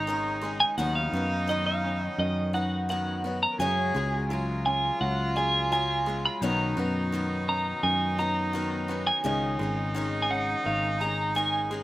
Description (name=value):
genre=folk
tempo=85 BPM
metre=4/4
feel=straight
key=unclear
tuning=A4 = 437 Hz
part: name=twelve-string electric guitar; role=melody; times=0.0-11.8 s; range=D#5 to B5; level=-28 LUFS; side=right 1 dB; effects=harmonic tremolo
part: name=warm cello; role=second line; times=0.0-11.8 s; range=D#4 to A#4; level=-33 LUFS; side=equal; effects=slapback echo
part: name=dark baby grand piano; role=accompaniment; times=0.0-11.8 s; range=F#1 to D#5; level=-40 LUFS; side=left 4 dB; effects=none
part: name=picked swing-style acoustic guitar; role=accompaniment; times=0.0-11.8 s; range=F#2 to G#4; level=-38 LUFS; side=left 6 dB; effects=slapback echo
part: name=bright upright piano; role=arpeggios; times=0.0-11.8 s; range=D#3 to G#4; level=-36 LUFS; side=right 2 dB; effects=slapback echo
part: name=fingered electric bass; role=bass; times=0.0-11.8 s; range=G#1 to F#2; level=-31 LUFS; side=equal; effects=none
room=little or no reverb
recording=recorded outdoors, with no room sound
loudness=-25 LUFS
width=side -16 dB against mid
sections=0.0-11.8 A section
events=none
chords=0.0 C#sus2; 0.8 Badd9/D#; 3.6 F#sus2; 6.4 Badd9; 9.2 C#sus2